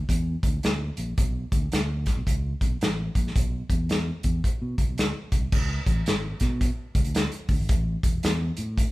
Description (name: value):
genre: uptempo 1960s-style soul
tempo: 110 BPM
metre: 4/4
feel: swing 63% on 8ths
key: unclear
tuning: A4 = 440 Hz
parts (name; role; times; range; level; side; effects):
- fingered electric bass; bass; 0.0-8.9 s; E1 to B2; -28 LUFS; equal; none
- natural country drum kit; drums; 0.1-8.9 s; crash cymbal, hi-hat, kick drum, snare drum; -24 LUFS; equal; none
room: light reverb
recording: band playing live in one room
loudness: -23 LUFS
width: side -19 dB against mid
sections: 0.0-5.5 A section; 5.5-8.9 B section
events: none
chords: none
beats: 0.09 0.63 | 1.18 1.72 2.27 2.81 | 3.35 3.90 4.44 4.99 | 5.53 6.07 6.61 7.16 | 7.70 8.24 8.78